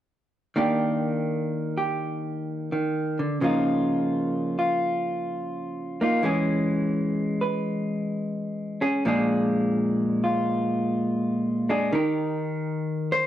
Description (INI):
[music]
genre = solo jazz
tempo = 85 BPM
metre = 4/4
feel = swing 66% on 8ths, rubato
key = Eb major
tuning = A4 = 440 Hz
[part]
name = vintage hollow-body jazz guitar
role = solo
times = 0.6-13.3 s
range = Bb2 to C5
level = -23 LUFS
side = equal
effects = cassette tape
[sound]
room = wet small room reverb, RT60 0.6 s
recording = home recording on cassette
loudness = -23 LUFS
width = side -12 dB against mid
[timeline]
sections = 0.6-11.9 A section; 11.9-13.3 B section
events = none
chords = 0.6 Ebmaj7; 3.4 Db69; 6.2 E6; 9.1 Bb7; 11.9 Eb